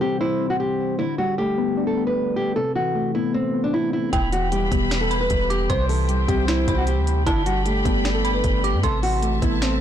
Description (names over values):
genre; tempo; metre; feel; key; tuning
hip hop, trap; 153 BPM; 4/4; half-time; unclear; A4 = 440 Hz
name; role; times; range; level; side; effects
nylon-string guitar; melody; 0.0-9.8 s; C4 to C5; -24 LUFS; equal; low-pass filter, digital delay
soft electric-piano-like synth keys; accompaniment; 0.0-9.8 s; B2 to C5; -25 LUFS; left 2 dB; chorus, low-pass filter
dark detuned synth bell; second line; 4.1-9.8 s; G5 to D6; -30 LUFS; right 4 dB; chorus, tremolo, digital delay
dark studio string section; sustained chords; 4.1-9.8 s; G4 to B5; -28 LUFS; left 2 dB; none
warm 808-style bass; bass; 4.1-9.8 s; E1 to G2; -23 LUFS; equal; transformer saturation
trap drum kit; drums; 4.1-9.7 s; finger snaps, hi-hat, kick drum, snare drum; -25 LUFS; equal; none
room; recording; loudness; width
moderate small room reverb, RT60 0.5 s; blown-out, overdriven recording, overdrive; -19 LUFS; side -10 dB against mid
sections
0.0-9.8 A section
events
none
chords
0.0 C; 1.0 Gadd9; 2.6 Amadd9; 4.1 Em; 5.7 C; 7.3 Gadd9; 8.8 Amadd9